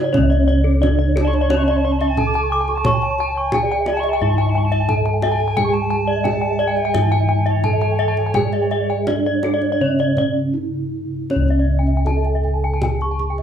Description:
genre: Balinese gamelan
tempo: 79-88 BPM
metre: 4/4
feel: straight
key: C# pelog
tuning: A4 = 438 Hz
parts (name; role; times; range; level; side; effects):
- gamelan-type bronze metallophone; melody; 0.0-13.4 s; C#4 to C#5; -23 LUFS; right 2 dB; none
- gamelan-type bronze metallophone; accompaniment; 0.0-0.1, 5.6-11.3 s; C#3 to G#3-30c; -30 LUFS; right 8 dB; none
- gamelan-type bronze metallophone; arpeggios; 0.0-13.4 s; A4-20c to D6+20c; -22 LUFS; left 2 dB; none
- gamelan-type bronze metallophone; arpeggios; 0.0-13.4 s; A4-20c to D6+20c; -26 LUFS; right 3 dB; none
- gamelan-type bossed gongs; bass; 0.0-13.4 s; C#2 to C#5; -20 LUFS; left 1 dB; none
- kendang; percussion; 0.1-13.4 s; none; -26 LUFS; right 1 dB; none
- mellow alto recorder; second line; 1.2-9.0 s; C#5 to C#6; -26 LUFS; right 1 dB; none
room: light reverb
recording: band playing live in one room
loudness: -16 LUFS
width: side -8 dB against mid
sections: 0.1-11.3 A section; 11.3-13.4 B section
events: break 10.2-11.3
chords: none

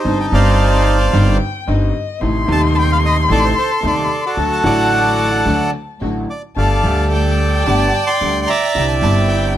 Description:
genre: tango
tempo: 110 BPM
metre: 4/4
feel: rubato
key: unclear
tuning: A4 = 439 Hz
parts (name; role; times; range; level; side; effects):
- bandoneon; melody; 0.0-9.5 s; Eb4 to C6; -17 LUFS; right 3 dB; none
- dark violin; second line; 0.0-9.6 s; Eb5 to C6; -22 LUFS; left 5 dB; none
- bright upright piano; accompaniment; 0.0-9.6 s; Eb1 to G4; -21 LUFS; equal; none
- rich studio string section; stabs; 0.1-9.6 s; A3 to G4; -27 LUFS; left 1 dB; none
- upright bass; bass; 0.1-9.6 s; G1 to Eb2; -17 LUFS; equal; none
room: light reverb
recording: close, detailed microphones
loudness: -13 LUFS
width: side -12 dB against mid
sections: 0.0-9.6 A section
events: none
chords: 0.0 Cmadd9/G; 2.2 Adim; 4.4 D; 6.6 Gsus2; 8.8 Cadd9

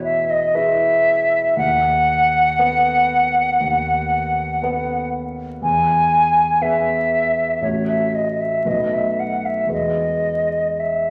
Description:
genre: classical, romantic duo for flute and grand piano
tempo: 56-61 BPM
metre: 4/4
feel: rubato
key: E major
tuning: A4 = 439 Hz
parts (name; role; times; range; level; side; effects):
- hollow concert flute; melody; 0.0-11.1 s; C#5 to G#5; -19 LUFS; equal; none
- dark grand piano; accompaniment; 0.0-11.1 s; A1 to C#5; -27 LUFS; equal; none
room: wet recital hall reverb, RT60 1.3 s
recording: vinyl crackle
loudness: -18 LUFS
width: mono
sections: 0.0-11.1 A section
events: none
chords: 0.0 E; 1.6 B7/D#; 5.6 E; 7.6 F#m/A; 8.7 B5; 9.7 E

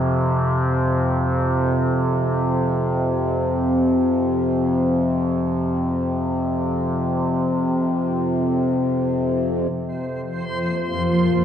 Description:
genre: dark ambient drone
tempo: free time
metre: none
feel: none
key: unclear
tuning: A4 = 436 Hz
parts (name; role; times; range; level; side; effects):
- overtone-sweeping drone; drone; 0.0-11.4 s; F2 to C3; -19 LUFS; equal; chorus, built-in reverb
- granular cloud pad; sustained chords; 10.3-11.4 s; F3 to Bb3; -20 LUFS; equal; built-in reverb
- backwards swelling texture; texture; 10.0-11.4 s; C5; -27 LUFS; right 1 dB; built-in reverb
room: wet cathedral reverb, RT60 7.7 s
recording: cassette tape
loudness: -19 LUFS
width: side -9 dB against mid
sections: 0.0-9.7 A section; 9.7-11.4 B section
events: none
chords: 0.0 F5

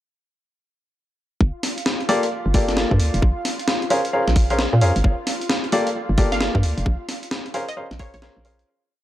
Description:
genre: UK garage, two-step garage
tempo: 132 BPM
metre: 4/4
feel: swing 63% on 16ths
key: G minor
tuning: A4 = 439 Hz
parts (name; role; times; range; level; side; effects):
- airy breathy pad; sustained chords; 1.4-8.7 s; F4 to F5; -31 LUFS; right 1 dB; chorus, sidechain pumping
- hollow knocking FM bass; bass; 1.4-8.6 s; F1 to Bb2; -20 LUFS; equal; transformer saturation
- electronic kick drum; drums; 1.4-8.1 s; none; -20 LUFS; equal; overdrive
- breakbeat sampler-style drum kit; drums; 1.6-8.7 s; hi-hat, snare drum; -24 LUFS; equal; none
- warm baby grand piano; stabs; 2.1-8.7 s; Bb3 to F5; -22 LUFS; left 1 dB; tape echo
- glassy wavetable pluck; melody; 6.3-8.2 s; Db5 to F5; -30 LUFS; right 2 dB; chorus, tape echo
room: light reverb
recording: dry, gritty hardware recording, cassette tape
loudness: -18 LUFS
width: side -13 dB against mid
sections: 1.4-8.7 groove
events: fade-out 6.3-8.7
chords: 1.4 Gm7; 3.2 Bbm7; 5.0 Gm7; 6.9 Bbm7

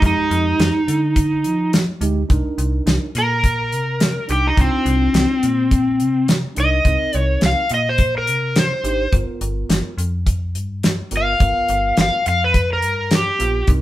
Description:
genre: straight-eighth soul blues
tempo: 105 BPM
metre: 4/4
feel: swing 53% on 16ths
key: C minor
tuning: A4 = 441 Hz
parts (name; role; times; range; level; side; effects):
- overdriven slide guitar; melody; 0.0-13.7 s; C4 to F5; -18 LUFS; left 1 dB; none
- mellow tine electric piano; accompaniment; 0.0-13.8 s; Ab3 to Bb4; -26 LUFS; right 4 dB; none
- metallic FM bass; bass; 0.0-13.8 s; G1 to F3; -22 LUFS; equal; none
- damped 70s drum kit; drums; 0.0-13.8 s; hi-hat, kick drum, snare drum; -18 LUFS; equal; none
room: moderate studio reverb, RT60 0.8 s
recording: band playing live in one room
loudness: -16 LUFS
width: side -14 dB against mid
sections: 0.0-13.8 A section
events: electric slide guitar solo 0.0-13.8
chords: 0.0 Fm9; 2.3 Cm9; 9.1 G7#9

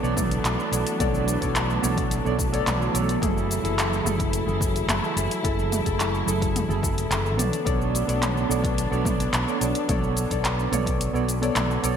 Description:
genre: sunset chillout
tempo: 108 BPM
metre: 4/4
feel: straight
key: unclear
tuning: A4 = 440 Hz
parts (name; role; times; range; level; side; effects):
- soft electric-piano-like synth keys; accompaniment; 0.0-12.0 s; F#3 to D5; -27 LUFS; right 1 dB; chorus, auto-pan, digital delay
- muted studio string section; sustained chords; 0.0-12.0 s; E3 to E4; -30 LUFS; right 1 dB; none
- fretless electric bass; bass; 0.0-12.0 s; F#1 to B1; -27 LUFS; equal; lush chorus
- deep house drum kit; drums; 0.0-11.9 s; cabasa, handclaps, hi-hat, toms; -28 LUFS; equal; overdrive, studio ambience, gated reverb
- electronic kick drum; drums; 0.2-11.0 s; none; -30 LUFS; equal; overdrive, studio ambience
room: moderate lush hall reverb, RT60 2.2 s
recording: bright 1980s-style digital production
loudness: -21 LUFS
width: side -8 dB against mid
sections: 0.0-12.0 A section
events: kick drops out 11.0-12.0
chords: 0.0 Bm9; 3.2 F#m9; 7.4 Bm9

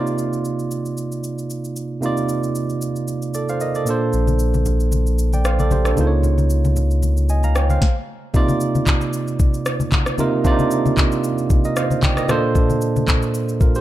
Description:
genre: amapiano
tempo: 114 BPM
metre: 4/4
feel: swing 55% on 16ths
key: C dorian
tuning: A4 = 440 Hz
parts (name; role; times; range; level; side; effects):
- barky tine electric piano; accompaniment; 0.0-13.8 s; Bb2 to Bb5; -20 LUFS; right 3 dB; none
- afro-pop drum kit; drums; 0.1-13.8 s; handclaps, kick drum, rim click, shaker, snare drum; -20 LUFS; equal; none
- warm sub bass; bass; 4.1-7.8 s; Bb1 to Db2; -17 LUFS; equal; none
- congas; percussion; 4.3-13.2 s; none; -25 LUFS; left 4 dB; none
room: light reverb, digital ambience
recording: dark, warm production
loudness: -17 LUFS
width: side -14 dB against mid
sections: 0.0-8.3 A section; 8.3-13.8 B section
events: stop 7.8-8.3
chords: 0.0 Cm11; 3.9 Bbmaj9; 6.0 Db69; 8.3 Cm11; 12.3 Bbmaj9

